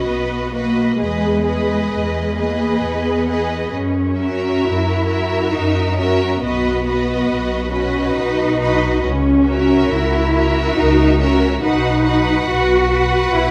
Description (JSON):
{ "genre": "classical, slow romantic movement for string orchestra", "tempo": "65-72 BPM", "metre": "3/4", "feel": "rubato", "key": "B major", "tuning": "A4 = 439 Hz", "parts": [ { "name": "rich studio violin section", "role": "melody", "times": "0.0-13.5 s", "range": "D#5 to F#5", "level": "-28 LUFS", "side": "equal", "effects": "none" }, { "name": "rich symphonic violin section", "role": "second line", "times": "0.0-13.5 s", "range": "A#4 to B4", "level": "-26 LUFS", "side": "equal", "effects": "none" }, { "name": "rich symphonic viola section", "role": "accompaniment", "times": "0.0-13.5 s", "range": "F#4 to G#4", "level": "-24 LUFS", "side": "equal", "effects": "none" }, { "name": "rich symphonic cello section", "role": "bass", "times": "0.0-13.5 s", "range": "G#3 to F#4", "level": "-21 LUFS", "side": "equal", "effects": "none" }, { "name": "clear symphonic double bass section", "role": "bass", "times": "0.1-13.5 s", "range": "B1 to F#2", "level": "-24 LUFS", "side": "equal", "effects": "none" } ], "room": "moderate scoring stage reverb, RT60 1.6 s", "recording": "none", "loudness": "-17 LUFS", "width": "mono", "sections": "0.0-13.5 A section", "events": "none", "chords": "0.0 B; 1.0 Emaj7; 3.7 F#7; 6.4 B; 9.1 F#7/C#; 11.6 B", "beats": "0.08 | 0.99 1.92 2.83 | 3.74 4.64 5.54 | 6.43 7.30 8.17 | 9.05 9.93 10.78 | 11.62 12.47 13.34" }